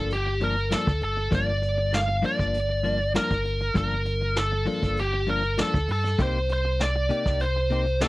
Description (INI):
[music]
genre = straight-eighth soul blues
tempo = 99 BPM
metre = 4/4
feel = swing 53% on 16ths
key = G minor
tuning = A4 = 436 Hz
[part]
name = biting lead guitar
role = melody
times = 0.0-8.1 s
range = G4 to F5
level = -26 LUFS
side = equal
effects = overdrive
[part]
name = direct-recorded clean electric guitar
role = stabs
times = 0.0-8.1 s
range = G2 to G4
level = -30 LUFS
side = left 3 dB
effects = none
[part]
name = fingered electric bass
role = bass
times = 0.0-8.0 s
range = G1 to G2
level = -27 LUFS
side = equal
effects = none
[part]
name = vintage brush drum kit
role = drums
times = 0.1-8.1 s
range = hi-hat, kick drum, snare drum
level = -27 LUFS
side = equal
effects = none
[sound]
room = little or no reverb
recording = dry, close 1970s-style studio recording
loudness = -22 LUFS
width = side -19 dB against mid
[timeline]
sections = 0.0-8.1 A section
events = none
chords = 0.0 Gm7; 6.2 Cm7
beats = 0.11 0.71 | 1.32 1.93 2.54 3.14 | 3.75 4.36 4.97 5.58 | 6.18 6.79 7.40 8.01